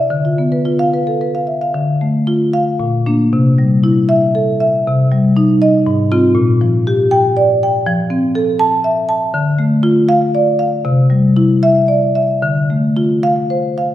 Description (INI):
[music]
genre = classical, contemporary piece for solo marimba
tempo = 105-123 BPM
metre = 3/4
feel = rubato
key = D minor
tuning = A4 = 441 Hz
[part]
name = marimba with medium mallets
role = solo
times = 0.0-13.9 s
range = G#2 to A5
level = -12 LUFS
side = equal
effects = none
[sound]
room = wet recital hall reverb, RT60 1.5 s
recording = recorded in a church or concert hall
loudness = -12 LUFS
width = side -13 dB against mid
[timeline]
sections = 0.0-1.8 A section; 1.8-13.9 B section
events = none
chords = 0.1 Dm6; 1.8 Dm; 2.8 Bb; 3.3 C6; 4.9 Cm; 5.9 G#6; 6.4 Bb6; 7.9 Fmaj7; 9.3 Dm; 10.8 Cadd9; 12.4 Dm7